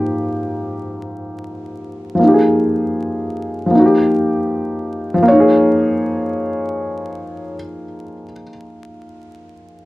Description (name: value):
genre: hip hop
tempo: free time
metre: none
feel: none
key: Bb dorian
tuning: A4 = 440 Hz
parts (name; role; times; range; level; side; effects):
- dark upright piano; accompaniment; 0.0-9.9 s; Ab2 to Ab4; -16 LUFS; equal; cassette tape
- felt-muted upright piano; melody; 5.3-7.5 s; Db5; -19 LUFS; left 2 dB; none
room: wet studio reverb, RT60 0.5 s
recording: dark, warm production, vinyl crackle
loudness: -14 LUFS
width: side -18 dB against mid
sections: 0.0-5.3 A section; 5.3-8.3 B section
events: break 0.0-5.3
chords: 0.0 Ab5; 2.2 Bb5; 3.7 Eb; 5.3 Bbm7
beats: free time